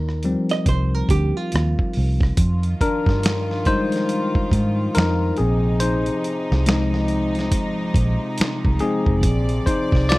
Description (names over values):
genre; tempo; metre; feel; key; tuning
R&B, neo-soul; 70 BPM; 4/4; swing 61% on 16ths; unclear; A4 = 440 Hz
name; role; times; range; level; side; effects
barky tine electric piano; accompaniment; 0.0-10.2 s; F3 to D5; -23 LUFS; left 2 dB; none
vintage muted fingered electric bass; bass; 0.0-10.2 s; F1 to Ab2; -21 LUFS; equal; none
dusty soul sampler-style drum kit; drums; 0.1-10.2 s; finger snaps, hi-hat, kick drum, rim click, snare drum; -22 LUFS; equal; none
archtop guitar, miked and amplified; second line; 0.5-2.3 s; F4 to Eb5; -27 LUFS; right 5 dB; none
rich studio string section; sustained chords; 2.4-10.2 s; C3 to D5; -28 LUFS; right 2 dB; none
room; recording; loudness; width
little or no reverb; dry, close 1970s-style studio recording; -18 LUFS; side -19 dB against mid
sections
0.0-10.2 A section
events
tine electric piano solo 0.0-10.2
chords
0.0 Eb69; 2.4 Fm7; 5.4 Bb9sus4; 9.2 Bb9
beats
0.66 1.51 | 2.37 3.23 4.09 4.94 | 5.80 6.66 7.51 8.37 | 9.23 10.09